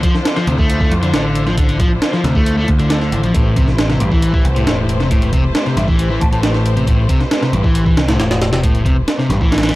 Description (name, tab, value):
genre	breakbeat, breaks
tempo	136 BPM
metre	4/4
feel	straight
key	unclear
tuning	A4 = 441 Hz
part	bright studio string section	sustained chords	0.0-9.8 s	D3 to C5	-24 LUFS	left 1 dB	sidechain pumping
part	overdriven semi-hollow guitar	riff	0.0-9.7 s	G2 to A3	-18 LUFS	left 1 dB	analog delay
part	breakbeat sampler-style drum kit	drums	0.0-9.7 s	hi-hat, kick drum, snare drum	-16 LUFS	equal	none
part	picked electric bass	bass	0.5-9.7 s	E1 to F2	-18 LUFS	equal	none
part	reedy baroque flute	melody	5.8-6.4 s	E5 to A5	-28 LUFS	left 1 dB	old record sound, vintage 12-bit sampler grit, analog delay
room	little or no reverb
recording	dry, gritty hardware recording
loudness	-12 LUFS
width	side -18 dB against mid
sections	0.0-9.8 A section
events	none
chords	0.0 Dm9; 3.3 Am9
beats	0.25 0.69 1.14 | 1.58 2.02 2.46 2.90 | 3.34 3.78 4.22 4.67 | 5.11 5.55 5.99 6.43 | 6.87 7.31 7.75 8.20 | 8.64 9.08 9.52